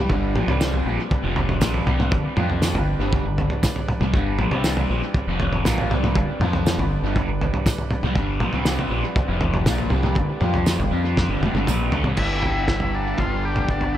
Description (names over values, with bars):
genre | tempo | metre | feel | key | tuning
psychedelic rock | 119 BPM | 4/4 | straight | G mixolydian | A4 = 440 Hz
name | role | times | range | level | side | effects
bright tonewheel organ | sustained chords | 0.0-14.0 s | G3 to B5 | -34 LUFS | right 4 dB | slow rotary speaker, overdrive
crunchy overdriven guitar | riff | 0.0-14.0 s | F2 to G4 | -24 LUFS | left 1 dB | phaser, tape echo
deep dub fingered electric bass | bass | 0.0-14.0 s | F1 to F2 | -25 LUFS | equal | none
cloth-damped thuddy drum kit | drums | 0.1-13.9 s | crash cymbal, kick drum, snare drum, toms | -23 LUFS | equal | tape echo
tambourine | percussion | 0.6-11.8 s | none | -37 LUFS | right 13 dB | none
overdriven combo organ | melody | 12.2-14.0 s | D4 to G4 | -27 LUFS | equal | tape echo
room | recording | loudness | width
light reverb, small room ambience | echo-heavy mix | -19 LUFS | side -12 dB against mid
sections
0.0-12.2 A section; 12.2-14.0 B section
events
drum fill 11.2-12.2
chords
0.0 G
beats
| 0.10 0.60 1.11 1.61 | 2.12 2.62 3.13 3.63 | 4.14 4.64 5.14 5.65 | 6.15 6.65 7.16 7.66 | 8.16 8.66 9.16 9.67 | 10.17 10.67 11.17 11.67 | 12.18 12.68 13.18 13.69